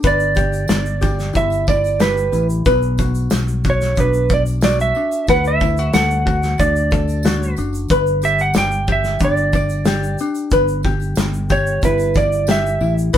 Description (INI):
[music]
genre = acoustic pop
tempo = 92 BPM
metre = 4/4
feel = straight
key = unclear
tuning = A4 = 441 Hz
[part]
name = ukulele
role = accompaniment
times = 0.0-13.2 s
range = D4 to D5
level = -22 LUFS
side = left 3 dB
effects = none
[part]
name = fingered electric bass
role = bass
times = 0.0-13.2 s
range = F#1 to D2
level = -20 LUFS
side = equal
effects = none
[part]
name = loose indie drum kit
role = drums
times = 0.0-13.2 s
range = kick drum, shaker, snare drum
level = -20 LUFS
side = equal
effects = none
[part]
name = tambourine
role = percussion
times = 0.0-13.2 s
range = none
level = -39 LUFS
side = right 4 dB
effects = none
[part]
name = electric slide guitar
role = melody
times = 0.1-13.0 s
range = B4 to G5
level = -19 LUFS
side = right 4 dB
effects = none
[sound]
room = moderate studio ambience, RT60 0.5 s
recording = band playing live in one room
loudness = -15 LUFS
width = side -10 dB against mid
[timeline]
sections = 0.0-13.2 A section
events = none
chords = 0.0 Em7/G; 2.7 Bm; 5.3 D6; 7.9 G; 10.5 Em7/G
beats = | 0.04 0.69 1.35 2.00 | 2.66 3.31 3.97 4.62 | 5.28 5.93 6.59 7.25 | 7.90 8.56 9.21 9.87 | 10.52 11.18 11.83 12.48 | 13.14